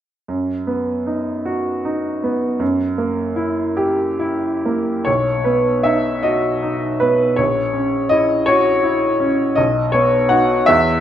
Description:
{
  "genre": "classical, romantic nocturne for solo piano",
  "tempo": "44-56 BPM (dotted quarters)",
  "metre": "6/8",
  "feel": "rubato",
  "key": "B major",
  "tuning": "A4 = 439 Hz",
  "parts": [
    { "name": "clear upright piano", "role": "solo", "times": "0.3-11.0 s", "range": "A#1 to F#5", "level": "-15 LUFS", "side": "equal", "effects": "none" }
  ],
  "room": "wet recital hall reverb, RT60 1.5 s",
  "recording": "none",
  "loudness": "-15 LUFS",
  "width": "side -10 dB against mid",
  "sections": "0.3-5.1 A section; 5.1-11.0 B section",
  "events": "none",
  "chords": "0.3 B/F#; 2.6 F#7b9; 5.1 B; 7.4 F#7/A#; 9.6 B"
}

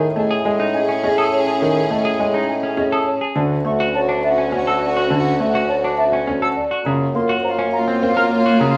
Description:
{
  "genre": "classical, minimalist pattern music",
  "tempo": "103 BPM",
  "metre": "3/4",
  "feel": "straight",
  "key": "unclear",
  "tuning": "A4 = 438 Hz",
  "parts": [
    { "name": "marimba with soft mallets", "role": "melody", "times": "0.0-8.8 s", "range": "G#4 to Bb5", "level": "-26 LUFS", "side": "equal", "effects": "none" },
    { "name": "warm soprano saxophone", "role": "second line", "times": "0.0-8.8 s", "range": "F4 to G#4", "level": "-28 LUFS", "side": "equal", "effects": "none" },
    { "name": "bright baby grand piano", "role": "accompaniment", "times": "0.0-8.8 s", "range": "Db3 to C#4", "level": "-24 LUFS", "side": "equal", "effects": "none" },
    { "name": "rich symphonic string section", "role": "sustained chords", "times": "0.0-8.8 s", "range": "Bb3 to G#4", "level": "-27 LUFS", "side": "equal", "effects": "none" },
    { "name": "warm bassoon", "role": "bass", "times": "0.0-8.8 s", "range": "D2 to A2", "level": "-25 LUFS", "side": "equal", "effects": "none" },
    { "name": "concert flute", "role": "arpeggios", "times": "0.2-8.2 s", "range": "Eb5 to F6", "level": "-28 LUFS", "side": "equal", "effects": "none" },
    { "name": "semi-hollow electric guitar", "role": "arpeggios", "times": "0.3-8.6 s", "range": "C4 to Bb4", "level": "-26 LUFS", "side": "equal", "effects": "none" }
  ],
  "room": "wet stone room reverb, RT60 1.0 s",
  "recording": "none",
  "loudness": "-18 LUFS",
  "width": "mono",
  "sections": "0.0-8.8 A section",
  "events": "none",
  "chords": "0.0 Amaj7; 3.4 Dmaj7; 6.9 Gbmaj7"
}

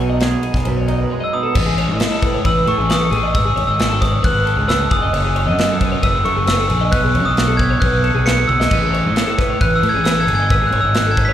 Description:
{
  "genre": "math rock and midwest emo",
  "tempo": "134 BPM",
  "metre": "4/4",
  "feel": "straight",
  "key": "unclear",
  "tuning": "A4 = 440 Hz",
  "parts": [
    { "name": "twangy electric guitar", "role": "accompaniment", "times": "0.0-3.1 s", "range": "F#2 to A4", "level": "-25 LUFS", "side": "right 9 dB", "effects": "plate reverb, slapback echo" },
    { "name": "twelve-string electric guitar", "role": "arpeggios", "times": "0.0-11.3 s", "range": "G#4 to D#5", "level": "-23 LUFS", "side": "left 2 dB", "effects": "lush chorus, plate reverb, slapback echo, digital delay" },
    { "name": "fuzz fingered electric bass", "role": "bass", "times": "0.0-11.3 s", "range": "F#1 to A2", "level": "-18 LUFS", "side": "equal", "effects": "overdrive" },
    { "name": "modern studio drum kit", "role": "drums", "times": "0.2-11.3 s", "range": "crash cymbal, kick drum, ride cymbal, snare drum, toms", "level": "-20 LUFS", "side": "equal", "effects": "none" },
    { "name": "glockenspiel with hard plastic mallets", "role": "melody", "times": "1.2-11.3 s", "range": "C#6 to C#7", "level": "-18 LUFS", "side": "equal", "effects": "plate reverb, slapback echo, digital delay" }
  ],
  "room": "light reverb",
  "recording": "live gig heard through the venue's PA, club reverb",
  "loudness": "-14 LUFS",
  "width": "side -11 dB against mid",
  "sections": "0.0-1.6 A section; 1.6-11.3 B section",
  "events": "drum fill 8.5",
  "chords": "0.0 B13; 1.6 Amaj7(b5, no3); 3.3 C#sus2/G#; 4.9 F#m9; 6.9 B9; 8.7 Amaj9#11; 10.5 C#sus2/G#"
}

